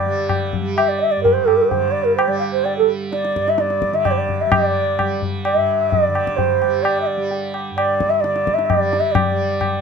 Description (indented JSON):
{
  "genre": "indian classical, Hindustani",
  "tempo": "129 BPM",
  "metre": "5/4",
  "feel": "straight",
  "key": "unclear",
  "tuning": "A4 = 440 Hz",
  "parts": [
    { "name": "mellow hollow bansuri", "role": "melody", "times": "0.0-9.8 s", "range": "A4 to F5", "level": "-17 LUFS", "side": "right 2 dB", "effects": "none" },
    { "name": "tanpura", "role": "drone", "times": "0.0-9.8 s", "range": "G2 to G3", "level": "-26 LUFS", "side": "right 5 dB", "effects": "none" },
    { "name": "tabla", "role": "percussion", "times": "0.3-9.8 s", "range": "none", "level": "-22 LUFS", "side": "left 4 dB", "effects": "none" }
  ],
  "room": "moderate small room reverb, RT60 0.5 s",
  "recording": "none",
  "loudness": "-16 LUFS",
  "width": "side -6 dB against mid",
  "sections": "0.0-9.8 A section",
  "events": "speeding up 0.0-9.8",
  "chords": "none"
}